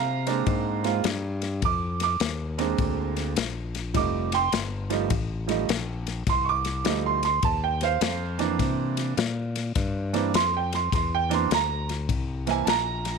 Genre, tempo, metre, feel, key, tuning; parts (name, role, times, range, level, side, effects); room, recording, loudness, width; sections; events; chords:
electric blues shuffle; 103 BPM; 4/4; swing 65% on 8ths; A4 = 440 Hz
warm upright piano; accompaniment; 0.0-13.2 s; E3 to D6; -26 LUFS; right 10 dB
modern bright fingered electric bass; bass; 0.0-13.2 s; F1 to C3; -29 LUFS; left 2 dB
natural country drum kit; drums; 0.3-13.1 s; kick drum, ride cymbal, snare drum; -29 LUFS; left 6 dB
light reverb, small room ambience; 1960s-style stereo with parts hard left and right; -23 LUFS; side -5 dB against mid
0.0-13.2 A section
0.0 Bb9; 3.9 F9; 8.6 C9